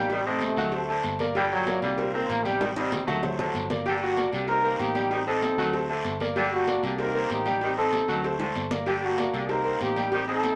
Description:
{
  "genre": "latin, salsa",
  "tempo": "192 BPM",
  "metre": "4/4",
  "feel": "straight",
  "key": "G harmonic minor",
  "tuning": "A4 = 438 Hz",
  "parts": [
    { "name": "bright trombone section", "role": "melody", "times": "0.0-10.6 s", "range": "A2 to Bb4", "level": "-30 LUFS", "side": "equal", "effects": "none" },
    { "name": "bright grand piano", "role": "accompaniment", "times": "0.0-10.5 s", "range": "F#3 to G5", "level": "-31 LUFS", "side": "equal", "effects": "none" },
    { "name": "fingered electric bass", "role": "bass", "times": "0.0-10.5 s", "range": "G1 to D2", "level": "-39 LUFS", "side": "equal", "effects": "none" },
    { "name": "bright saxophone section", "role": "second line", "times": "0.1-10.4 s", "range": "D3 to Eb3", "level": "-36 LUFS", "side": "equal", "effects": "none" },
    { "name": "congas", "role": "percussion", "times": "0.1-10.6 s", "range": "none", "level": "-40 LUFS", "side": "equal", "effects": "none" },
    { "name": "cowbell and bongos", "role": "percussion", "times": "0.1-10.6 s", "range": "none", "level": "-38 LUFS", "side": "equal", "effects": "none" },
    { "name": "guiro", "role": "percussion", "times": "0.1-10.6 s", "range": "none", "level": "-41 LUFS", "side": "equal", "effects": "none" }
  ],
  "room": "wet studio ambience, RT60 0.5 s",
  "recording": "none",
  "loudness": "-26 LUFS",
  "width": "mono",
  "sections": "0.0-3.9 A section; 3.9-10.6 A section",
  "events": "drum fill 2.6-3.9, 8.4-8.9",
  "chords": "0.1 Am7b5; 0.7 D5; 1.4 Gm; 2.0 Cm7; 2.6 Am7b5; 3.2 D7; 3.9 Gm; 4.5 Cm7; 5.1 Am7b5; 5.7 D5; 6.4 Gm; 7.0 Cm7; 7.6 Am7b5; 8.2 D5; 8.9 Gm; 9.5 Cm7"
}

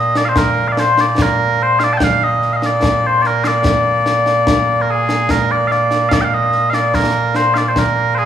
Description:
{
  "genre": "scottish traditional, Scottish pipe music",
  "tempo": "73 BPM",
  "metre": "2/4",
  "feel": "straight",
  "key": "Bb mixolydian",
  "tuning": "A4 = 440 Hz",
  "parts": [
    { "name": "mellow small bagpipes", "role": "melody", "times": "0.0-8.3 s", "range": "Bb2 to A5", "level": "-13 LUFS", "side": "equal", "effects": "none" },
    { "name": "concert snare drum and concert bass drum", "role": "drums", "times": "0.2-7.9 s", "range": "none", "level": "-19 LUFS", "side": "left 1 dB", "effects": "none" }
  ],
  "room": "moderate recital hall reverb, RT60 1.4 s",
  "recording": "recorded in a church or concert hall, small room ambience",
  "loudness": "-12 LUFS",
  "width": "side -9 dB against mid",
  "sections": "0.0-8.3 A section",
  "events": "none",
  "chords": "none"
}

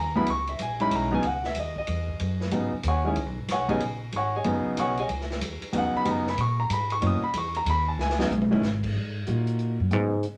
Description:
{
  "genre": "modal jazz",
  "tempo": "187 BPM",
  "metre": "3/4",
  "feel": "swing 64% on 8ths",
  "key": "C# dorian",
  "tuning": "A4 = 438 Hz",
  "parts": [
    { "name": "warm concert grand piano", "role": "accompaniment", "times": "0.0-10.1 s", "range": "B2 to D#6", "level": "-29 LUFS", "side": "equal", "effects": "none" },
    { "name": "upright bass", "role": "bass", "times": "0.0-10.2 s", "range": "F#1 to A#2", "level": "-31 LUFS", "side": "equal", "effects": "none" },
    { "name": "swinging big-band drum kit", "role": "drums", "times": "0.3-10.3 s", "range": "crash cymbal, hi-hat, kick drum, ride cymbal, snare drum, toms", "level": "-35 LUFS", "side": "equal", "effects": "none" }
  ],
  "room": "moderate studio reverb, RT60 0.5 s",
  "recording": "none",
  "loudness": "-27 LUFS",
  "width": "mono",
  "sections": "0.0-1.2 A section; 1.2-8.9 A section; 8.9-10.4 A section",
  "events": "drum fill 8.0-8.6; upright bass solo 8.9-10.4",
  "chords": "0.0 Dbm11; 1.2 C#9sus4; 8.9 Ebm11"
}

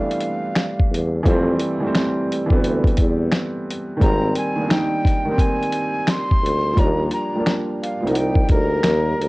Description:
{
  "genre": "lo-fi hip hop",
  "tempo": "87 BPM",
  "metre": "4/4",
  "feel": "swing 65% on 16ths",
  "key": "unclear",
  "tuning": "A4 = 440 Hz",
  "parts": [
    { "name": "breathy mellow silver concert flute", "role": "melody", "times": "0.0-9.3 s", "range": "Bb4 to C6", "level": "-25 LUFS", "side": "equal", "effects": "low-pass filter, cassette tape, plate reverb" },
    { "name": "felt-muted upright piano", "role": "accompaniment", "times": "0.0-9.3 s", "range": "Eb3 to Eb4", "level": "-22 LUFS", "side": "right 1 dB", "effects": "cassette tape, low-pass filter" },
    { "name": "lo-fi sampler-style drum kit", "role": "drums", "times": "0.1-9.3 s", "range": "finger snaps, hi-hat, kick drum, snare drum", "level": "-19 LUFS", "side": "equal", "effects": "cassette tape" },
    { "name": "warm tuba", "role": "bass", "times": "0.9-9.3 s", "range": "Ab1 to F2", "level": "-21 LUFS", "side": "equal", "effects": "transformer saturation" }
  ],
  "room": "light reverb",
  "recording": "home recording on cassette",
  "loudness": "-17 LUFS",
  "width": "side -22 dB against mid",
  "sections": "0.0-9.3 A section",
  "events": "none",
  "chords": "0.0 Fmaj9; 4.0 Abmaj9; 6.8 Ebmaj9"
}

